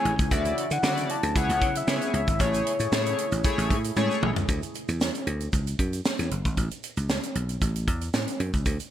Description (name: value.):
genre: early-eighties boogie funk.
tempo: 115 BPM.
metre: 4/4.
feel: straight.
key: unclear.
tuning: A4 = 440 Hz.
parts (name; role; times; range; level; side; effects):
mellow horn-like synth lead; melody; 0.0-4.2 s; C#5 to A5; -28 LUFS; left 3 dB; chorus.
chorused polysynth; accompaniment; 0.0-4.3 s; C#3 to D5; -30 LUFS; left 2 dB; none.
deep dark ambient pad; sustained chords; 0.0-4.5 s; C#3 to G#4; -36 LUFS; right 2 dB; chorus, built-in reverb.
dry thumbed slap bass; bass; 0.0-8.8 s; F#1 to D3; -28 LUFS; equal; none.
tight funk drum kit; drums; 0.1-8.9 s; hi-hat, kick drum, snare drum, toms; -28 LUFS; right 1 dB; gated reverb.
egg shaker; percussion; 0.2-8.9 s; none; -42 LUFS; right 9 dB; none.
room: light reverb, small room ambience.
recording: bright 1980s-style digital production.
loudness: -24 LUFS.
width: side -11 dB against mid.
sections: 0.0-4.5 A section; 4.5-8.9 B section.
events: drum fill 4.0-4.5.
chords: 0.3 Dmaj9; 1.4 C#m7; 2.4 Amaj7; 4.5 Dsus2; 5.5 C#m; 6.6 A.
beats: | 0.31 0.83 1.36 1.88 | 2.40 2.92 3.44 3.96 | 4.49 5.01 5.53 6.05 | 6.57 7.09 7.62 8.14 | 8.66.